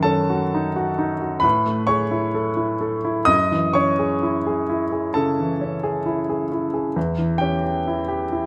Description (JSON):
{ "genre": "classical, impressionist solo piano", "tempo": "65 BPM", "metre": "4/4", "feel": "rubato", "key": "F# dorian", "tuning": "A4 = 443 Hz", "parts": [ { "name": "clear grand piano", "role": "solo", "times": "0.0-8.5 s", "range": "E2 to D#6", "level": "-22 LUFS", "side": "equal", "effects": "none" } ], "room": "moderate recital hall reverb, RT60 1.3 s", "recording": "close, detailed microphones", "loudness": "-22 LUFS", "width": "mono", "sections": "0.0-8.5 A section", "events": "none", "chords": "0.0 F#m6; 1.4 Amaj9; 3.3 F#m9; 7.0 Em6" }